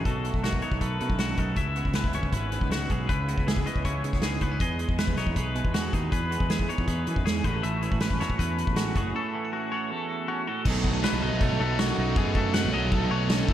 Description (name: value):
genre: math rock and midwest emo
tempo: 159 BPM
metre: 4/4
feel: straight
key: unclear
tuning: A4 = 444 Hz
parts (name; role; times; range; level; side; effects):
- twangy electric guitar; accompaniment; 0.0-13.5 s; E2 to B4; -33 LUFS; right 6 dB; analog chorus
- twangy electric guitar; arpeggios; 0.0-13.5 s; F#4 to F#5; -32 LUFS; left 5 dB; spring reverb, diffuse ambient delay
- fuzz picked electric bass; bass; 0.0-13.5 s; F#1 to E3; -29 LUFS; equal; overdrive
- loose indie drum kit; drums; 0.1-13.5 s; crash cymbal, hi-hat, kick drum, snare drum; -28 LUFS; equal; none
- biting overdriven guitar; riff; 10.7-13.5 s; B2 to E4; -29 LUFS; right 2 dB; none
room: moderate lush hall reverb, RT60 2.1 s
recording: dreamy mix soaked in reverb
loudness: -24 LUFS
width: side -11 dB against mid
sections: 0.0-10.7 A section; 10.7-13.5 B section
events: break 9.1-10.7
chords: 0.0 B7; 1.6 C#m7; 4.6 Emaj7; 7.4 A6; 10.7 B13